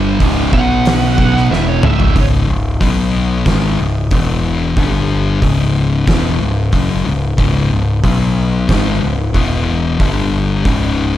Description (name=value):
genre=stoner and doom metal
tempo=92 BPM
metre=4/4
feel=straight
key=C# minor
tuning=A4 = 440 Hz
part: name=thick fuzz guitar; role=riff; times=0.0-11.2 s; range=C#2 to B3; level=-16 LUFS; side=left 4 dB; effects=distortion
part: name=thick fuzz guitar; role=riff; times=0.0-2.2 s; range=C#2 to B3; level=-18 LUFS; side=right 10 dB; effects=distortion
part: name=growling picked electric bass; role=bass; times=0.0-11.2 s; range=C#1 to B1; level=-18 LUFS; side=right 1 dB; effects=overdrive
part: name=oversized low-tuned drum kit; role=drums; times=0.2-10.8 s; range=hi-hat, kick drum, snare drum, toms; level=-17 LUFS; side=right 1 dB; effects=none
part: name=fuzz lead guitar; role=melody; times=0.5-2.2 s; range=C#5 to F#5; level=-20 LUFS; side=right 2 dB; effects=distortion
room=studio ambience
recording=dark, warm production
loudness=-12 LUFS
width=side -13 dB against mid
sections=0.0-2.2 A section; 2.2-11.2 B section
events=lead electric guitar solo 0.0-2.2; drum fill 1.5-2.2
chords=0.2 C#5; 0.5 B5; 1.2 C#m; 2.2 C#5; 2.8 B5; 3.5 C#5; 4.1 E5; 4.8 G5; 5.4 C#m; 8.0 B5; 8.7 C#5; 9.3 E5; 10.0 G5; 10.7 C#5